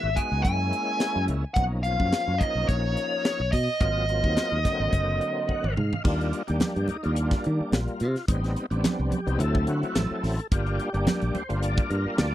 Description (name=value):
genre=electric jazz fusion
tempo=107 BPM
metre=4/4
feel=swing 54% on 16ths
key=Eb major from 6.0 s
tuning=A4 = 440 Hz
part: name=dark smooth lead guitar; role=melody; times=0.0-5.7 s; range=C#5 to G#5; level=-27 LUFS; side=equal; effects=overdrive
part: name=overdriven tonewheel organ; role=accompaniment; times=0.0-12.3 s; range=D3 to Gb5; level=-30 LUFS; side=left 1 dB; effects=slow rotary speaker, chorus vibrato
part: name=fingered electric bass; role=bass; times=0.0-12.3 s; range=Gb1 to Eb3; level=-26 LUFS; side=equal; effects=none
part: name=crisp fusion drum kit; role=drums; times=0.2-12.3 s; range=crash cymbal, hi-hat, kick drum, snare drum, toms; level=-27 LUFS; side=equal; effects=none
part: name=congas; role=percussion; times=6.0-12.3 s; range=none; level=-31 LUFS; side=right 4 dB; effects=none
room=little or no reverb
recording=dry, close 1970s-style studio recording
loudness=-23 LUFS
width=side -13 dB against mid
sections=0.0-6.0 A section; 6.0-12.3 B section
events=tonewheel organ fill 5.2-6.0; drum fill 5.5-6.0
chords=0.4 F#9; 1.6 Bmaj9#11; 3.8 Ab13; 6.0 Ebmaj9; 8.3 Am7b5; 9.4 D7; 10.5 Gm7